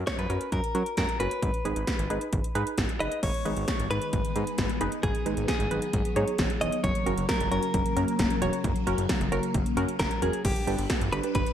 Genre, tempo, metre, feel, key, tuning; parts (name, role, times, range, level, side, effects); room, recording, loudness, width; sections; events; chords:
synth-pop; 133 BPM; 4/4; straight; A4 = 440 Hz
warbly dusty pluck; accompaniment; 0.0-11.4 s; C#4 to C#5; -32 LUFS; right 1 dB; chorus
fat analog bass; bass; 0.0-11.4 s; E1 to F#3; -31 LUFS; equal
direct-recorded clean electric guitar; melody; 0.1-11.5 s; G4 to D#5; -32 LUFS; equal; harmonic tremolo
80s electronic pad drums; drums; 0.1-11.5 s; crash cymbal, hi-hat, kick drum, snare drum; -29 LUFS; equal; gated reverb
phased string machine; sustained chords; 3.2-11.5 s; C#3 to B4; -32 LUFS; left 1 dB; ensemble chorus, phaser
moderate plate reverb, RT60 1.1 s, digital ambience; bright 1980s-style digital production; -25 LUFS; side -10 dB against mid
0.0-3.2 A section; 3.2-10.4 B section; 10.4-11.5 C section
0.0 F#; 1.4 G#m; 6.8 F#; 10.4 Gadd9